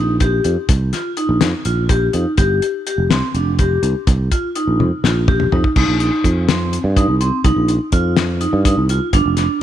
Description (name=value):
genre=progressive instrumental, band music in an uneven meter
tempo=249 BPM (eighths)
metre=7/8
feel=straight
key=C minor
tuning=A4 = 439 Hz
part: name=vibraphone with medium hard mallets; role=arpeggios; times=0.0-9.6 s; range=C4 to G4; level=-19 LUFS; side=equal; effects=none
part: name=sustaining fretless electric bass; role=bass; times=0.0-9.5 s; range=F1 to G2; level=-18 LUFS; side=right 1 dB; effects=none
part: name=cloth-damped thuddy drum kit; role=drums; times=0.2-9.5 s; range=crash cymbal, hi-hat, kick drum, snare drum, toms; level=-18 LUFS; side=left 1 dB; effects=none
room=light reverb, studio ambience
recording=1960s-style stereo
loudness=-14 LUFS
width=side -11 dB against mid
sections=0.0-5.8 A section; 5.8-9.6 B section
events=drum fill 4.8-5.8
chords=0.0 Cm7 (rootless); 2.4 G5; 4.1 Cm7